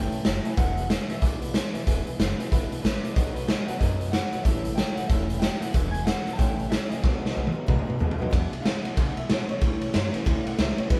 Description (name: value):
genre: rockabilly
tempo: 186 BPM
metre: 4/4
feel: swing 61% on 8ths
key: E mixolydian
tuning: A4 = 440 Hz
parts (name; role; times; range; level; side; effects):
- electric guitar through a small old amp; melody; 0.0-8.2 s; B4 to A5; -38 LUFS; equal; none
- honky-tonk upright piano; accompaniment; 0.0-11.0 s; F#3 to B5; -40 LUFS; equal; none
- picked steel-string acoustic guitar; accompaniment; 0.0-11.0 s; E2 to F#4; -42 LUFS; equal; none
- electric guitar through a small old amp; riff; 0.0-11.0 s; E2 to G#3; -37 LUFS; equal; none
- upright bass; bass; 0.0-11.0 s; E1 to C#3; -33 LUFS; equal; none
- raw garage drum kit; drums; 0.1-11.0 s; hi-hat, kick drum, ride cymbal, snare drum, toms; -27 LUFS; equal; none
room: light reverb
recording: band playing live in one room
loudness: -26 LUFS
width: mono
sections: 0.0-8.3 A section; 8.3-11.0 B section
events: drum fill 7.0-8.3; honky-tonk piano fill 7.4-8.3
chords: 0.0 A7; 0.6 E7; 3.2 B7; 4.5 A7; 5.7 E7; 6.4 A7; 7.0 B7; 8.3 E7; 9.6 A7